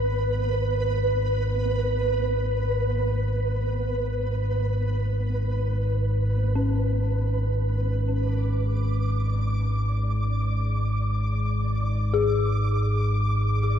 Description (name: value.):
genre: dark ambient drone.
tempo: free time.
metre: none.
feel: none.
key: G# minor.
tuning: A4 = 440 Hz.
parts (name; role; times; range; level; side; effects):
deep rumbling drone; drone; 0.0-13.8 s; G#1 to G#2; -24 LUFS; equal; built-in reverb.
flickering grainy texture; texture; 0.0-13.8 s; B4 to D6; -29 LUFS; right 1 dB; built-in reverb.
dark detuned synth bell; arpeggios; 6.6-13.8 s; C#4 to G#4; -31 LUFS; left 6 dB; chorus, phaser, ping-pong delay.
room: wet cathedral reverb, RT60 6.1 s.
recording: none.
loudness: -22 LUFS.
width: side -9 dB against mid.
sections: 0.0-13.8 A section.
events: none.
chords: 0.0 G#m; 8.1 N.C..